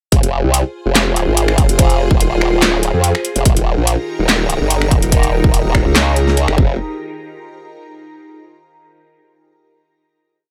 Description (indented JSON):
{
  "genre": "heavy wobble dubstep",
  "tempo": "144 BPM",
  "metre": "4/4",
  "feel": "swing 53% on 16ths, half-time",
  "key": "F minor",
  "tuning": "A4 = 440 Hz",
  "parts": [
    { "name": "evolving wavetable pad", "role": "sustained chords", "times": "0.7-6.8 s", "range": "Eb3 to Bb5", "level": "-25 LUFS", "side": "equal", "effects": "ensemble chorus, built-in reverb, phaser, sidechain pumping" },
    { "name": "formant-sweep wobble bass", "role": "bass", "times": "0.1-6.8 s", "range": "Eb1 to F2", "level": "-17 LUFS", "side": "equal", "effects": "chorus, overdrive" },
    { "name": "dubstep drum kit", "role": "drums", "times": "0.1-6.6 s", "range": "finger snaps, handclaps, hi-hat, snare drum", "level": "-19 LUFS", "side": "equal", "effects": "none" },
    { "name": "electronic kick drum", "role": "drums", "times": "0.1-6.7 s", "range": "none", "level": "-16 LUFS", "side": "equal", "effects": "none" }
  ],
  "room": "digital ambience",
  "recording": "none",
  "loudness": "-14 LUFS",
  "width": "mono",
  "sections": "0.1-6.8 drop; 6.8-8.5 final hit",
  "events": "drop 0.1-6.8",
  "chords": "0.1 Fm; 3.5 Eb; 6.6 Fm; 6.8 N.C.",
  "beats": "| 0.12 0.54 0.95 1.37 | 1.79 2.21 2.62 3.04 | 3.46 3.87 4.29 4.71 | 5.12 5.54 5.96 6.37"
}